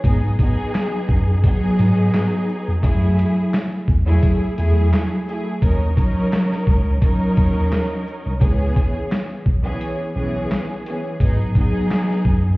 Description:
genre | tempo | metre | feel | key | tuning
hip hop, boom-bap hip-hop | 86 BPM | 4/4 | swing 55% on 16ths | C# minor | A4 = 440 Hz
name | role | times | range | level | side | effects
dark studio string section | accompaniment | 0.0-12.5 s | E3 to A#4 | -21 LUFS | equal | high-pass filter, low-pass filter
mellow tine electric piano | bass | 0.0-12.6 s | B1 to G#2 | -19 LUFS | equal | fast stereo tremolo
boom bap sampler-style drum kit | drums | 0.0-12.4 s | handclaps, hi-hat, kick drum, shaker, snare drum | -18 LUFS | equal | none
room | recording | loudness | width
little or no reverb | heard muffled through a wall, stone room reverb, vinyl crackle, EQ | -16 LUFS | side -21 dB against mid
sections
0.0-8.4 A section; 8.4-12.6 B section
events
none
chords
0.0 G#m7; 2.8 F#m9; 5.6 D#m7; 8.4 C#m7; 11.2 G#m7

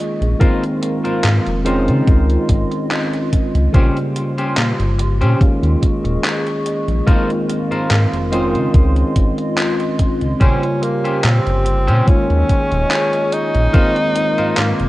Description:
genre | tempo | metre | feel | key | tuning
vaporwave | 72 BPM | 4/4 | swing 54% on 16ths | unclear | A4 = 440 Hz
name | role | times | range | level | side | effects
mellow tine electric piano | accompaniment | 0.0-14.9 s | Db3 to C5 | -20 LUFS | equal | overdrive, analog chorus, vintage 12-bit sampler grit, analog delay
warbly tape-like pad | sustained chords | 0.0-14.9 s | F4 to Db6 | -26 LUFS | equal | chorus, built-in reverb
chorused synth bass | bass | 0.2-14.9 s | Eb1 to Db3 | -17 LUFS | equal | tube saturation
gated 80s digital drum machine | drums | 0.2-14.9 s | handclaps, hi-hat | -24 LUFS | equal | gated reverb, overdrive
clean electric guitar | riff | 0.4-14.8 s | Db4 to C5 | -25 LUFS | left 1 dB | wide subtle chorus, low-pass filter, analog delay
electronic kick drum | drums | 0.4-13.9 s | none | -13 LUFS | equal | none
breathy tenor saxophone | melody | 10.4-14.9 s | Bb3 to Eb4 | -19 LUFS | equal | tape echo
room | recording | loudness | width
light reverb, digital ambience | worn, warbling old tape, cassette tape, warbly pitch drift | -14 LUFS | side -17 dB against mid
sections
0.0-14.9 A section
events
none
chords
0.4 Ab69; 1.7 Dbmaj9; 3.7 Bbm69; 5.4 Eb7sus4; 7.1 Ab69; 8.3 Dbmaj9; 10.4 Bbm69; 12.1 Eb7sus4; 13.7 Ab69

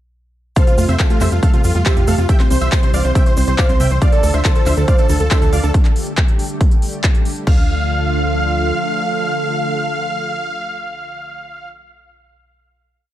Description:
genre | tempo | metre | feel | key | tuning
uplifting trance | 139 BPM | 4/4 | straight | D minor | A4 = 440 Hz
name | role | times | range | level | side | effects
dense compressed supersaw | melody | 0.6-11.7 s | F4 to G5 | -22 LUFS | right 1 dB | cassette tape, sidechain pumping, tape echo
analog pluck | second line | 0.6-12.0 s | F4 to G5 | -31 LUFS | left 2 dB | none
warm velvety synth lead | second line | 0.6-11.7 s | G4 to D5 | -24 LUFS | right 2 dB | chorus, tape echo
analog string pad | sustained chords | 0.6-11.7 s | C3 to G4 | -25 LUFS | equal | ensemble chorus, sidechain pumping
wide unison pluck | arpeggios | 0.6-7.7 s | C3 to D4 | -24 LUFS | right 2 dB | sidechain pumping, tape echo
big-room dance drum kit | drums | 0.6-7.6 s | crash cymbal, handclaps, hi-hat | -25 LUFS | left 1 dB | none
electronic kick drum | drums | 0.6-7.6 s | none | -14 LUFS | equal | none
tube shaker | percussion | 0.6-5.7 s | none | -35 LUFS | right 2 dB | none
tight sequencer bass | bass | 0.8-8.7 s | C2 to F2 | -17 LUFS | equal | sidechain pumping
room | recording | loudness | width
little or no reverb | dark, warm production, faint mains hum | -13 LUFS | side -13 dB against mid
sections
0.6-7.5 drop; 7.5-10.9 final chord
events
drop 0.6-7.5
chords
0.6 Fadd9; 2.3 C; 4.0 Dm; 5.7 Gsus2; 7.5 Dm

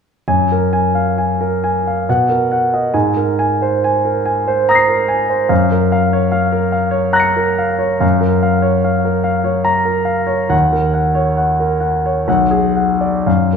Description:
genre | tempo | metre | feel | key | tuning
classical, impressionist solo piano | 57-73 BPM | 3/4 | rubato | F# major | A4 = 439 Hz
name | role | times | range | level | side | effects
clear concert grand piano | solo | 0.3-13.6 s | B1 to C#7 | -13 LUFS | equal | none
room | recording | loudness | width
wet recital hall reverb, RT60 1.4 s | minimal, uncompressed stereo recording | -13 LUFS | side -6 dB against mid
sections
0.2-13.6 A section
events
none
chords
0.2 F#maj9; 2.1 Bmaj7; 2.9 G#add9; 5.5 F#maj7; 10.5 D#m7; 12.3 Bm6

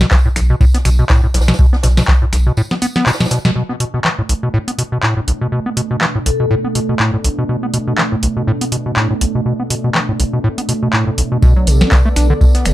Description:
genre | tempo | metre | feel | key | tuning
acid house | 122 BPM | 4/4 | swing 56% on 16ths | B minor | A4 = 441 Hz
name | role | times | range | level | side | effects
acid bass, square | riff | 0.0-12.7 s | B1 to D4 | -17 LUFS | equal | tube saturation, sidechain pumping, ping-pong delay
round analog bass | bass | 0.0-2.5, 11.7-12.7 s | F#1 to B1 | -13 LUFS | equal | sidechain pumping
booming analog drum machine | drums | 0.0-12.7 s | finger snaps, handclaps, hi-hat, snare drum | -18 LUFS | equal | none
snare drum and tambourine | drums | 0.0-3.4, 11.4-12.7 s | none | -27 LUFS | right 2 dB | high-pass filter on snare, sidechain pumping on perc, high-pass filter on perc, high-pass filter on room
electronic kick drum | drums | 0.1-2.2, 11.4-12.5 s | none | -11 LUFS | equal | none
warm analog pad | sustained chords | 3.6-12.7 s | B2 to D5 | -22 LUFS | right 2 dB | chorus, sidechain pumping
vibraphone with soft mallets | melody | 6.3-6.5 s | A4 | -22 LUFS | left 7 dB | digital delay
room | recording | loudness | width
light reverb | dark, warm production | -12 LUFS | side -15 dB against mid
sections
0.0-3.6 A section; 3.6-11.4 B section; 11.4-12.7 C section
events
filter sweep on acid bass 0.0-3.6; break 2.6-3.6; drum fill 3.2-3.6; band accent 3.4; filter sweep on analog synth pad 3.6-11.4; drop 11.4-12.7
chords
0.0 N.C.; 3.6 Bm7

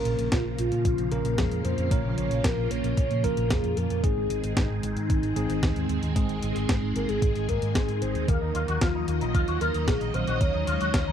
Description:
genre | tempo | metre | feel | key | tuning
italo disco | 113 BPM | 4/4 | straight | Bb minor | A4 = 440 Hz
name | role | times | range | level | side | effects
soft octave-layered synth lead | melody | 0.0-11.1 s | Eb4 to Db5 | -30 LUFS | equal | chorus, phaser, tape echo
phased string machine | sustained chords | 0.0-11.1 s | Db3 to Eb5 | -32 LUFS | equal | ensemble chorus, phaser
bell-like tine electric piano | stabs | 0.0-7.5 s | Ab2 to Bb4 | -33 LUFS | right 3 dB | fast stereo tremolo, vintage 12-bit sampler grit, tape echo
hollow-body short-scale fingered electric bass | bass | 0.0-11.1 s | Ab1 to Bb2 | -30 LUFS | equal | none
clean 12-bit digital drum machine | drums | 0.1-11.0 s | hi-hat, snare drum | -32 LUFS | equal | none
electronic kick drum | drums | 0.3-11.0 s | none | -26 LUFS | equal | none
electric guitar with an envelope filter | arpeggios | 8.3-11.1 s | Bb3 to Gb4 | -32 LUFS | left 3 dB | ensemble chorus, tape echo
room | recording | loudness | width
little or no reverb | dry, close 1970s-style studio recording | -23 LUFS | side -9 dB against mid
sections
0.0-11.1 A section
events
none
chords
0.0 Bbm; 4.0 Ab; 8.3 Ebmadd9

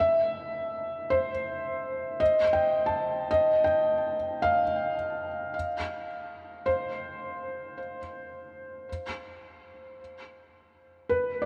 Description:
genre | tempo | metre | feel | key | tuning
ambient | 54 BPM | 3/4 | straight | unclear | A4 = 441 Hz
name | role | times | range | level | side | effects
felt-muted upright piano | solo | 0.0-11.5 s | B4 to A5 | -29 LUFS | equal | delay
room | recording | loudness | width
wet cathedral reverb, RT60 6.4 s | dark, warm production | -28 LUFS | mono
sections
0.0-11.5 A section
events
none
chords
0.0 C; 2.2 Ebadd9; 5.5 N.C.

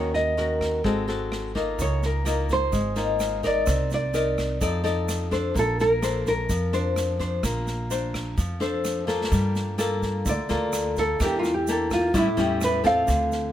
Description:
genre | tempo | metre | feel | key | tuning
bossa nova | 127 BPM | 4/4 | straight | Bb major, G minor from 9.3 s | A4 = 440 Hz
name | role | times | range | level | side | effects
nylon-string guitar | melody | 0.0-13.5 s | E4 to F5 | -25 LUFS | right 1 dB | none
nylon-string guitar | accompaniment | 0.0-13.5 s | A2 to D5 | -26 LUFS | left 2 dB | none
upright bass | bass | 0.0-13.5 s | Ab1 to G2 | -28 LUFS | right 1 dB | none
swinging big-band drum kit | drums | 0.1-13.4 s | kick drum, rim click, snare drum | -33 LUFS | right 1 dB | none
egg shaker | percussion | 1.8-13.5 s | none | -40 LUFS | right 6 dB | none
room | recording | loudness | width
light reverb | close, detailed microphones | -22 LUFS | side -11 dB against mid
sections
0.0-9.3 A section; 9.3-13.5 B section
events
drum fill 9.1; nylon-string guitar solo 9.3-13.5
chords
0.0 Ebm7; 0.8 Ab7b9; 1.8 Db69; 3.7 Cm9; 4.6 F6; 5.6 Bbmaj9; 9.3 Gm9; 11.2 Em7b5; 12.1 A7

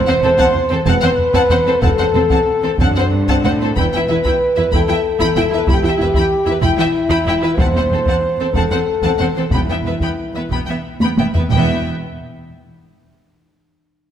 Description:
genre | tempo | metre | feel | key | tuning
cinematic, epic orchestral film score | 62 BPM (dotted quarters) | 6/8 | straight | E minor | A4 = 439 Hz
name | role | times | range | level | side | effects
warm French horn section | sustained chords | 0.0-11.8 s | D4 to C5 | -17 LUFS | left 2 dB | none
rich symphonic violin section | melody | 0.1-11.9 s | C5 to B5 | -25 LUFS | left 4 dB | none
rich studio violin section | second line | 0.1-11.9 s | A4 to G5 | -24 LUFS | left 3 dB | none
rich symphonic viola section | accompaniment | 0.1-11.9 s | B3 to E4 | -23 LUFS | right 2 dB | none
rich symphonic cello section | bass | 0.1-11.9 s | E2 to A2 | -22 LUFS | right 2 dB | none
rich studio double bass section | bass | 0.2-11.9 s | E1 | -22 LUFS | right 3 dB | none
taiko ensemble | drums | 0.4-12.8 s | none | -21 LUFS | equal | none
timpani | percussion | 7.6-11.8 s | E2 | -27 LUFS | equal | none
room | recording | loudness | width
moderate concert hall reverb, RT60 2.0 s | none | -13 LUFS | side -9 dB against mid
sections
0.0-11.5 A section; 11.5-13.5 B section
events
drum fill 11.0-11.5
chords
0.0 F#dim/E; 3.8 Em; 7.6 F#dim/E (rootless); 9.5 Em; 11.5 E5

